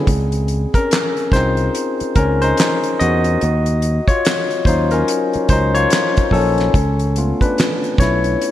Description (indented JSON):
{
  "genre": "R&B, neo-soul",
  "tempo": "72 BPM",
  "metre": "4/4",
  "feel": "swing 60% on 16ths",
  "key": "Db major",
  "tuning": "A4 = 441 Hz",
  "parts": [
    { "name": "barky tine electric piano", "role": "accompaniment", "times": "0.0-8.5 s", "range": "Gb3 to Eb5", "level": "-17 LUFS", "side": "left 2 dB", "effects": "none" },
    { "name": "fingered electric bass", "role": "bass", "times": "0.1-8.3 s", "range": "Bb1 to Fb2", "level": "-18 LUFS", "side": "equal", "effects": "none" },
    { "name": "damped 70s drum kit", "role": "drums", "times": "0.1-8.5 s", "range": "handclaps, hi-hat, kick drum, snare drum", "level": "-18 LUFS", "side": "equal", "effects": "gated reverb" }
  ],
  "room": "moderate plate reverb, RT60 3.1 s",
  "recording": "bright 1980s-style digital production",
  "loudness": "-14 LUFS",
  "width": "side -12 dB against mid",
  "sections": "0.1-8.5 A section",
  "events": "tine electric piano solo 0.1-8.5",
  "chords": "0.1 Dbmaj9; 3.4 Ebm9; 6.7 Db7alt"
}